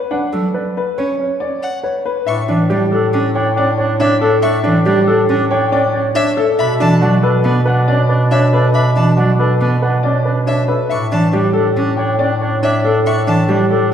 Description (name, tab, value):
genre	classical, minimalist pattern music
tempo	139 BPM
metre	5/4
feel	straight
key	unclear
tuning	A4 = 439 Hz
part	clear baby grand piano	melody	0.0-13.9 s	A4 to G5	-18 LUFS	left 4 dB	none
part	clear concert grand piano	arpeggios	0.1-13.9 s	C#4 to C#5	-19 LUFS	right 4 dB	none
part	rich cello	accompaniment	0.3-13.7 s	E3 to C#4	-18 LUFS	right 1 dB	none
part	warm violin	arpeggios	1.6-13.4 s	E5 to C#6	-24 LUFS	left 2 dB	none
part	warm oboe	second line	2.3-13.9 s	D4	-22 LUFS	right 2 dB	none
part	warm bass clarinet	bass	2.3-13.9 s	A2 to B2	-17 LUFS	equal	none
room	wet scoring stage reverb, RT60 1.9 s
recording	heard from further back in the room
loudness	-12 LUFS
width	side -9 dB against mid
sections	0.0-2.3 A section; 2.3-13.9 B section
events	none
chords	0.0 Bm7; 2.3 A7sus4; 6.6 Bm11; 10.9 A7sus4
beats	| 0.11 0.54 0.98 1.41 1.84 | 2.27 2.70 3.13 3.57 4.00 | 4.43 4.86 5.29 5.72 6.16 | 6.59 7.02 7.45 7.88 8.31 | 8.74 9.18 9.61 10.04 10.47 | 10.90 11.34 11.77 12.20 12.63 | 13.06 13.49 13.93